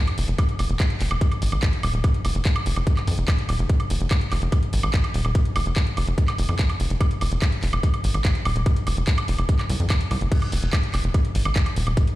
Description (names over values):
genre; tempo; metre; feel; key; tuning
psychedelic trance; 145 BPM; 4/4; straight; F phrygian; A4 = 440 Hz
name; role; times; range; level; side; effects
drum and bass drum kit; drums; 0.1-12.2 s; crash cymbal, handclaps, hi-hat, woodblock; -28 LUFS; right 1 dB; none
tight sequencer bass; bass; 0.2-11.9 s; Eb1 to F2; -22 LUFS; equal; none
electronic kick drum; drums; 0.4-12.1 s; none; -20 LUFS; equal; none
room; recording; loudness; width
little or no reverb; played on a big sound system in a bare room, large studio reverb; -20 LUFS; side -16 dB against mid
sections
0.0-12.2 A section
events
none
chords
none